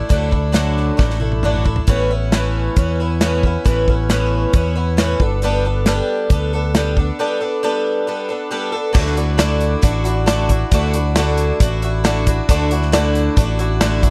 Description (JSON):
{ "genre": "folk rock and heartland rock", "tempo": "136 BPM", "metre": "4/4", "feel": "straight", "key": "D major", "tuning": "A4 = 440 Hz", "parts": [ { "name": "picked twelve-string acoustic guitar", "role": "accompaniment", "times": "0.0-14.1 s", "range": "A2 to A4", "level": "-22 LUFS", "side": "equal", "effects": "none" }, { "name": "fingered electric bass", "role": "bass", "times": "0.1-14.1 s", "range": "G1 to E2", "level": "-21 LUFS", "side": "equal", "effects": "none" }, { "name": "natural country drum kit", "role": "drums", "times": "0.1-14.1 s", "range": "crash cymbal, hi-hat, kick drum, snare drum, toms", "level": "-19 LUFS", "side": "equal", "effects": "none" } ], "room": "little or no reverb", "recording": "dry, close 1970s-style studio recording", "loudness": "-17 LUFS", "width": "mono", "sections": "0.0-9.0 A section; 9.0-14.1 B section", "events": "drum fill 1.0-1.9; break 7.2-9.0", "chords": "0.0 Dadd9; 1.9 Aadd9; 5.2 Gadd9; 9.0 Dadd9" }